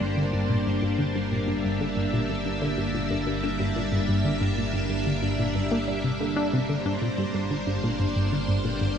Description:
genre	ambient, sequencer-driven space music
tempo	92 BPM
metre	4/4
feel	straight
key	G dorian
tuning	A4 = 440 Hz
part	string machine, full ensemble	sustained chords	0.0-9.0 s	G3 to E5	-27 LUFS	equal	ensemble chorus, shimmer reverb
part	tight sequenced synth	riff	0.0-8.9 s	G2 to D4	-27 LUFS	equal	chorus, ping-pong delay
part	analog drone	bass	0.0-9.0 s	G1	-34 LUFS	equal	chorus
room	moderate lush hall reverb, RT60 2.8 s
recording	none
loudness	-24 LUFS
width	side -8 dB against mid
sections	0.0-9.0 A section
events	none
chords	0.0 Gm

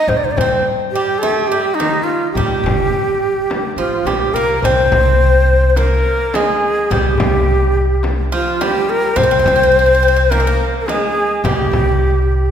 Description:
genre	Turkish makam ensemble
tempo	106 BPM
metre	4/4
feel	straight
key	G makam ussak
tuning	A4 = 438 Hz
part	breathy bright ney	melody	0.0-12.5 s	Eb4 to D5	-15 LUFS	equal	none
part	Greek bouzouki	second line	0.0-12.5 s	Eb3 to C4	-22 LUFS	right 3 dB	none
part	upright bass	bass	0.1-12.5 s	G1 to G2	-18 LUFS	equal	none
part	darbuka	percussion	0.1-12.5 s	none	-25 LUFS	left 2 dB	none
part	frame drum	percussion	0.1-11.9 s	none	-23 LUFS	left 1 dB	none
room	wet concert hall reverb, RT60 1.8 s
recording	recorded in a church or concert hall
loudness	-12 LUFS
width	side -8 dB against mid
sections	0.0-4.6 A section; 4.6-12.5 B section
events	none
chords	none

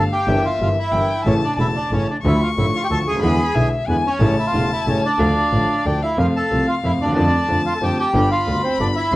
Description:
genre	tango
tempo	183 BPM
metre	3/4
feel	rubato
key	D harmonic minor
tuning	A4 = 440 Hz
part	bandoneon	melody	0.0-9.2 s	B3 to A5	-21 LUFS	right 1 dB	none
part	warm violin	second line	0.0-9.2 s	E5 to C#6	-25 LUFS	left 4 dB	none
part	warm concert grand piano	accompaniment	0.0-9.2 s	E1 to G4	-21 LUFS	equal	none
part	rich double bass	bass	0.0-9.2 s	E1 to F2	-22 LUFS	equal	none
room	moderate club reverb, RT60 0.7 s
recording	worn, warbling old tape, cassette tape, warbly pitch drift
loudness	-16 LUFS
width	side -18 dB against mid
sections	0.0-6.2 A section; 6.2-9.2 B section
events	none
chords	0.3 Edim/G; 1.3 A; 2.2 Dm; 3.2 E7; 4.2 A7; 5.2 Dm; 6.2 F; 7.2 Dm7/F; 8.1 G7

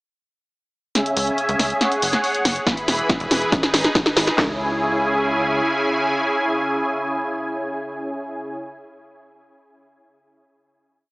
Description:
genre	uplifting trance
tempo	140 BPM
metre	4/4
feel	straight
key	C# minor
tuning	A4 = 440 Hz
part	filtered supersaw swell	sustained chords	1.0-8.6 s	C#3 to B5	-21 LUFS	equal	sidechain pumping
part	punchy analog drum machine	drums	1.0-4.4 s	hi-hat, snare drum	-21 LUFS	equal	sidechain pumping on hats
part	tight sequencer bass	bass	1.2-5.6 s	E1 to C#2	-30 LUFS	equal	tube saturation, sidechain pumping
part	techno drum kit	drums	2.7-4.5 s	handclaps, kick drum, snare drum	-21 LUFS	equal	none
room	moderate huge ambient reverb, RT60 5.1 s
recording	small speaker sound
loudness	-18 LUFS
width	side -24 dB against mid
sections	1.0-4.4 build; 4.4-7.8 final chord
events	build-up 1.0-4.4; drum fill 1.0-4.4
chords	1.0 C#m; 1.8 F#sus2; 2.7 E; 3.5 G#m; 4.4 C#m

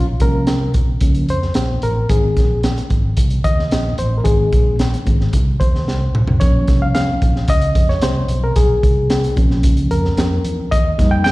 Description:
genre	uptempo 1960s-style soul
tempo	111 BPM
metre	4/4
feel	straight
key	unclear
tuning	A4 = 441 Hz
part	reed electric piano	accompaniment	0.0-11.3 s	Eb3 to G5	-20 LUFS	left 1 dB	fast tremolo, plate reverb, slapback echo
part	fingered electric bass	bass	0.0-11.3 s	Ab1 to F2	-18 LUFS	equal	tube saturation
part	crunchy breakbeat drum kit	drums	0.2-11.3 s	hi-hat, kick drum, snare drum, toms	-17 LUFS	equal	none
room	light reverb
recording	live gig heard through the venue's PA, recital hall reverb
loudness	-14 LUFS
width	side -19 dB against mid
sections	0.0-11.3 A section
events	reed electric piano solo 0.0-11.3; drum fill 5.9-6.4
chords	0.0 Bbm; 2.1 Ab; 6.4 Bbm; 10.7 Eb

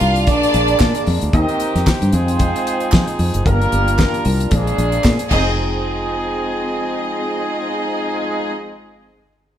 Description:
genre	disco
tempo	113 BPM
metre	4/4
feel	swing 56% on 16ths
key	F dorian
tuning	A4 = 440 Hz
part	clear studio string section	second line	0.0-1.0, 5.3-8.5 s	C4 to F5	-22 LUFS	equal	none
part	muted French horn section	sustained chords	0.0-8.5 s	Eb3 to Bb4	-24 LUFS	right 1 dB	none
part	fingered electric bass	bass	0.0-8.5 s	F1 to F3	-18 LUFS	equal	none
part	damped 70s drum kit	drums	0.0-5.5 s	crash cymbal, hi-hat, kick drum, snare drum	-19 LUFS	equal	none
part	warm horn section	stabs	0.3-8.5 s	F3 to Eb5	-22 LUFS	equal	none
part	group handclap	percussion	0.8-5.8 s	none	-31 LUFS	right 2 dB	none
room	wet stone room reverb, RT60 1.2 s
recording	band playing live in one room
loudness	-15 LUFS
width	side -10 dB against mid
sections	0.0-5.6 A section; 5.6-9.6 B section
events	none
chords	0.3 Bb7; 1.3 Eb6; 2.1 Fm7; 3.5 Gm7; 4.5 Bb7; 5.3 Fm7

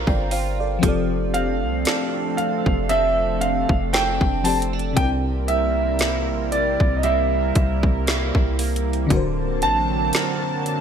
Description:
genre	contemporary R&B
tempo	58 BPM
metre	4/4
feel	swing 54% on 16ths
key	F major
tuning	A4 = 439 Hz
part	FM electric piano with soft pad layer	accompaniment	0.0-10.8 s	C3 to G5	-27 LUFS	left 3 dB	chorus, tremolo
part	direct-recorded clean electric guitar	arpeggios	0.0-10.8 s	C3 to Bb4	-30 LUFS	right 9 dB	analog chorus, ping-pong delay
part	warm 808-style bass	bass	0.0-10.1 s	D1 to C2	-25 LUFS	equal	none
part	trap drum kit	drums	0.1-10.8 s	hi-hat, kick drum, snare drum	-23 LUFS	equal	gated reverb
part	chorused pulse-width pad	sustained chords	0.8-10.8 s	F3 to A5	-27 LUFS	equal	sidechain pumping
part	warm concert grand piano	melody	1.3-10.8 s	D5 to A5	-23 LUFS	right 2 dB	lush chorus, ping-pong delay
room	light reverb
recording	bright 1980s-style digital production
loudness	-18 LUFS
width	side -8 dB against mid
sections	0.0-10.8 A section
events	none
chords	0.0 Gm11; 0.8 F6; 5.0 C7; 9.1 D7b13

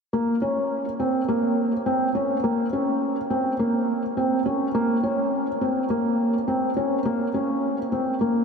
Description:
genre	electronica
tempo	104 BPM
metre	4/4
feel	straight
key	Bb minor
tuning	A4 = 438 Hz
part	felt-muted upright piano	riff	0.1-8.4 s	Bb3 to Db4	-21 LUFS	equal	wide subtle chorus, analog delay
room	wet huge ambient reverb, RT60 8.6 s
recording	dreamy mix soaked in reverb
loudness	-21 LUFS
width	side -5 dB against mid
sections	0.1-8.4 A section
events	none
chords	none

